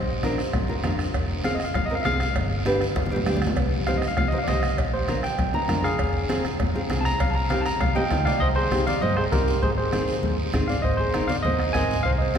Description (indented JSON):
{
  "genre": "latin, cumbia",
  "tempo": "198 BPM",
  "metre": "4/4",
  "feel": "straight",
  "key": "C minor",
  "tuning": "A4 = 440 Hz",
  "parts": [
    { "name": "overdriven tine electric piano", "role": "melody", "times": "0.0-12.4 s", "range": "G4 to Bb5", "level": "-26 LUFS", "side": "right 1 dB", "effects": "none" },
    { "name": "vintage muted fingered electric bass", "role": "bass", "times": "0.0-12.4 s", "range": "F1 to G2", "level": "-27 LUFS", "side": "equal", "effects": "none" },
    { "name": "nylon-string guitar", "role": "accompaniment", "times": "0.2-12.4 s", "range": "C4 to D5", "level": "-29 LUFS", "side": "equal", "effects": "none" },
    { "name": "bombo", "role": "percussion", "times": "0.2-12.4 s", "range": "none", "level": "-29 LUFS", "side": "equal", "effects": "none" },
    { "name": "congas", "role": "percussion", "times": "0.2-12.4 s", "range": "none", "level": "-30 LUFS", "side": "left 2 dB", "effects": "none" },
    { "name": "guiro", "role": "percussion", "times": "0.2-12.4 s", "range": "none", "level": "-38 LUFS", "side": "right 2 dB", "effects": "none" },
    { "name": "cowbell and timbales", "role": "percussion", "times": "0.5-8.3 s", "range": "none", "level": "-37 LUFS", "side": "right 5 dB", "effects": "none" }
  ],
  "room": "wet cathedral reverb, RT60 6.5 s",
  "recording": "recorded in a church or concert hall",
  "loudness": "-21 LUFS",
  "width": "side -8 dB against mid",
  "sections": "0.0-8.4 A section; 8.4-12.4 B section",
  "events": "tine electric piano solo 0.0-8.4; drum fill 3.0-3.6, 7.5-8.4",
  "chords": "0.0 Bb; 1.1 Fm; 2.4 G; 3.6 Cm; 4.8 Bb; 6.0 Fm; 7.2 Cm; 9.6 Ab"
}